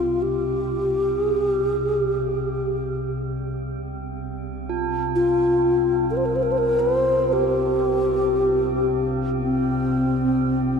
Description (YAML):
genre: world meditative, free-time meditation music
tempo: free time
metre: none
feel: none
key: unclear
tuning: A4 = 440 Hz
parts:
  - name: mellow bass flute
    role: melody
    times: 0.0-10.8 s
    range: C4 to C5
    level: -20 LUFS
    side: equal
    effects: none
  - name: metallic inharmonic drone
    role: drone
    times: 0.0-10.8 s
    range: C2 to C3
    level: -27 LUFS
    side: left 1 dB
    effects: chorus, built-in reverb
  - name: bronze singing bowl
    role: texture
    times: 4.7-10.8 s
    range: F4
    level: -31 LUFS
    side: right 8 dB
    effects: none
room: wet huge ambient reverb, RT60 5.1 s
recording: dark, warm production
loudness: -20 LUFS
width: side -6 dB against mid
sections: 0.0-10.8 A section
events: none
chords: none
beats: free time